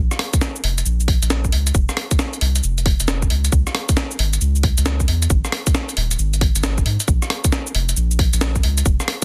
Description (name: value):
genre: UK garage, two-step garage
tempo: 135 BPM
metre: 4/4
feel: swing 65% on 16ths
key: unclear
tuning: A4 = 439 Hz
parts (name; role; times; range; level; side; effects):
- soft dub sub bass; bass; 0.0-9.0 s; Eb1 to Ab2; -21 LUFS; equal; none
- breakbeat sampler-style drum kit; drums; 0.1-9.2 s; hi-hat, rim click, shaker, snare drum; -24 LUFS; equal; soft clipping on snare
- electronic kick drum; drums; 0.3-9.2 s; none; -21 LUFS; equal; none
room: little or no reverb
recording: dense, heavily limited modern master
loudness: -19 LUFS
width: mono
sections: 0.0-9.2 A section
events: none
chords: none